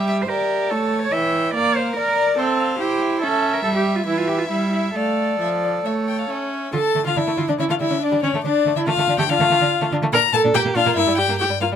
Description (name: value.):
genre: quick classical-period movement for string quartet.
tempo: 142 BPM.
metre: 4/4.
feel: straight.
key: D minor.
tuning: A4 = 440 Hz.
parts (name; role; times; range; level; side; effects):
rich violin; melody; 0.0-11.7 s; C#5 to Bb5; -23 LUFS; left 12 dB; none.
warm violin; second line; 0.0-11.8 s; G3 to E5; -25 LUFS; left 4 dB; none.
warm viola; accompaniment; 0.0-11.7 s; E3 to Bb4; -22 LUFS; right 2 dB; none.
rich cello; bass; 0.0-11.8 s; G2 to E5; -23 LUFS; right 5 dB; none.
room: light reverb.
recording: close, detailed microphones.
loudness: -17 LUFS.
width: side -8 dB against mid.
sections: 0.0-6.7 A section; 6.7-11.8 B section.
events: none.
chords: 0.0 Edim/G; 0.7 A7; 1.6 Bb; 2.4 C; 3.2 A; 5.0 Dm/A; 5.8 A; 6.7 Dm; 7.6 A/D (rootless); 8.4 Dm; 10.1 Bb5; 11.0 N.C..